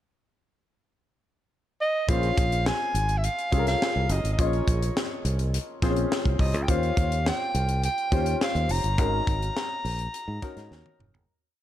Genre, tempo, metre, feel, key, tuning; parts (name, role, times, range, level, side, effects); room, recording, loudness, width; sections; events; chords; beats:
polished 1980s jazz-funk pop; 104 BPM; 4/4; straight; Bb minor; A4 = 441 Hz
breathy soprano saxophone; melody; 1.8-11.0 s; Db5 to Bb5; -29 LUFS; right 1 dB
warm grand piano; accompaniment; 2.1-11.3 s; C4 to Eb5; -31 LUFS; left 3 dB; lush chorus
fingered electric bass; bass; 2.1-11.2 s; F1 to Ab2; -26 LUFS; equal
tight funk drum kit; drums; 2.1-11.3 s; hi-hat, kick drum, snare drum, toms; -28 LUFS; equal
small room ambience; dark, warm production; -23 LUFS; side -12 dB against mid
0.0-2.1 pickup bar; 2.1-11.3 verse
fade-out 9.0-11.3; drum fill 10.7-11.3
0.0 N.C.; 2.1 Bbm9; 6.7 Eb13; 9.0 Ab9sus4
0.36 0.93 1.51 | 2.09 2.66 3.24 3.81 | 4.39 4.96 5.54 6.11 | 6.69 7.26 7.84 8.41 | 8.99 9.56 10.14 10.71